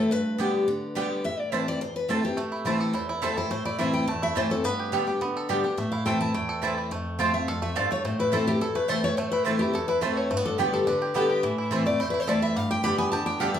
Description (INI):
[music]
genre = bluegrass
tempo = 212 BPM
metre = 4/4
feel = straight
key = A minor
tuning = A4 = 441 Hz
[part]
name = picked steel-string acoustic guitar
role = melody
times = 0.0-13.6 s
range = E4 to B5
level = -28 LUFS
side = left 2 dB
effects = none
[part]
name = picked steel-string acoustic guitar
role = accompaniment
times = 0.0-13.6 s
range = E2 to G4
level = -27 LUFS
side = left 1 dB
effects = none
[part]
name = mandolin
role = stabs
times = 0.4-13.5 s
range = A3 to A5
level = -30 LUFS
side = right 5 dB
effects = none
[part]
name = bluegrass banjo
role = melody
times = 2.4-13.6 s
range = E3 to A4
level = -32 LUFS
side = right 3 dB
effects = none
[part]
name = clear fiddle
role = second line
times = 11.2-11.8 s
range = E4 to A4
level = -29 LUFS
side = left 2 dB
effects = none
[sound]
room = wet large studio reverb, RT60 0.8 s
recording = band playing live in one room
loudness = -24 LUFS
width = side -9 dB against mid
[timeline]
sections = 0.0-6.9 A section; 6.9-13.6 B section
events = none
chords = 0.1 G; 1.2 Am; 4.6 G; 5.8 Am; 6.9 F; 8.0 Am; 10.3 G; 11.4 Am; 12.6 G